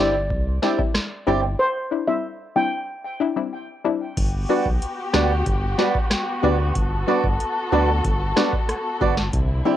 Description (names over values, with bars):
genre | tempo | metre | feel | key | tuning
dancehall | 93 BPM | 4/4 | straight | G major | A4 = 440 Hz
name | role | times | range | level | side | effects
steel pan | melody | 0.0-2.7 s | C5 to G5 | -24 LUFS | equal | cassette tape, tape echo
analog pluck | accompaniment | 0.0-9.8 s | G3 to F#4 | -24 LUFS | left 8 dB | chorus, sidechain pumping, cassette tape
fingerpicked swing-style acoustic guitar | arpeggios | 0.0-9.8 s | C4 to D5 | -22 LUFS | right 7 dB | cassette tape
round analog bass | bass | 0.0-9.6 s | G1 to D2 | -23 LUFS | equal | none
booming analog drum machine | drums | 0.3-9.5 s | crash cymbal, hi-hat, kick drum, rim click, snare drum | -24 LUFS | equal | overdrive, cassette tape
dark studio string section | sustained chords | 4.2-9.8 s | D3 to A4 | -26 LUFS | left 2 dB | sidechain pumping, cassette tape
room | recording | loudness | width
light reverb | home recording on cassette | -19 LUFS | side -11 dB against mid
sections
0.0-4.2 A section; 4.2-9.8 B section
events
break 1.6-4.2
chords
0.0 Cadd9; 4.2 Gmaj7